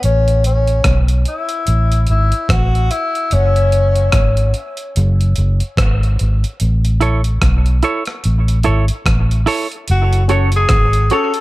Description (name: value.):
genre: dub reggae.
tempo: 73 BPM.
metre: 4/4.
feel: swing 59% on 16ths.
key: unclear.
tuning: A4 = 440 Hz.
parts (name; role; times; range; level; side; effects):
warm tenor saxophone; melody; 0.0-4.6, 9.9-11.4 s; C#4 to A4; -18 LUFS; left 2 dB; dub echo.
vintage muted fingered electric bass; bass; 0.0-11.1 s; F#1 to B1; -13 LUFS; equal; none.
breakbeat sampler-style drum kit; drums; 0.0-11.4 s; hi-hat, kick drum, rim click; -19 LUFS; equal; none.
semi-hollow electric guitar; accompaniment; 7.0-11.3 s; E4 to C#5; -20 LUFS; right 5 dB; dub echo.
percussive organ stab; stabs; 10.3-11.3 s; C#4 to C#5; -22 LUFS; left 4 dB; chorus, dub echo.
room: little or no reverb.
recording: none.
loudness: -12 LUFS.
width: side -18 dB against mid.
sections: 0.0-11.4 A section.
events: break 0.0-6.6.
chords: 0.0 A5; 3.3 F#5; 6.6 A; 9.9 F#m.